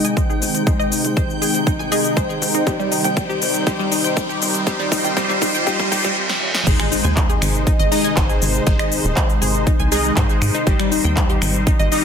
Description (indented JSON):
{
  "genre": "progressive house",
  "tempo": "120 BPM",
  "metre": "4/4",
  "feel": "straight",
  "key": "Ab major",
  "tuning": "A4 = 437 Hz",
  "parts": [
    { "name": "warm analog pad", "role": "sustained chords", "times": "0.0-12.0 s", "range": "C3 to F4", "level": "-26 LUFS", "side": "right 1 dB", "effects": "chorus, sidechain pumping" },
    { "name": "analog pluck", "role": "arpeggios", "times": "0.0-12.0 s", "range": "G3 to Ab5", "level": "-24 LUFS", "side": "equal", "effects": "chorus, phaser, sidechain pumping, digital delay" },
    { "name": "supersaw stab", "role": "stabs", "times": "0.0-12.0 s", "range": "G3 to Eb5", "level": "-23 LUFS", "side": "left 2 dB", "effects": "phaser, sidechain pumping, low-pass filter, digital delay" },
    { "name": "big-room dance drum kit", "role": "drums", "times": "0.0-12.0 s", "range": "crash cymbal, finger snaps, handclaps, hi-hat, shaker, snare drum", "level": "-23 LUFS", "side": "left 2 dB", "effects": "overdrive, small room ambience" },
    { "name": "riser, reverse cymbal and impact", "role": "sound effects", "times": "1.9-8.7 s", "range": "none", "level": "-28 LUFS", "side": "right 1 dB", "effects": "none" },
    { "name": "backwards swelling texture", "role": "texture", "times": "0.0-6.2 s", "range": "G5 to G6", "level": "-30 LUFS", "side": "right 1 dB", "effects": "built-in reverb, sidechain pumping" },
    { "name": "tight sequencer bass", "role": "bass", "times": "0.2-11.9 s", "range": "Eb1 to Ab2", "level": "-23 LUFS", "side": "equal", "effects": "sidechain pumping, high-pass filter" },
    { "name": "electronic kick drum", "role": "drums", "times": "0.2-11.8 s", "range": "none", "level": "-19 LUFS", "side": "equal", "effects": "overdrive, small room ambience" }
  ],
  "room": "light reverb",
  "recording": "dense, heavily limited modern master, high-pass filter",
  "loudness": "-16 LUFS",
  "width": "side -7 dB against mid",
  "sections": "0.0-6.7 A section; 6.7-12.0 B section",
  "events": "build-up 0.0-6.7; filter sweep on supersaw synth 0.0-6.7; filter sweep 0.0-6.7; riser 1.9-6.2; drum fill 2.7-6.2, 6.3-6.7; reverse cymbal 5.7-6.7; drop 6.7-12.0; impact 6.7-8.7",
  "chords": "0.0 Ab; 2.7 Cm/Ab; 6.7 Ab; 10.7 Cm/Ab"
}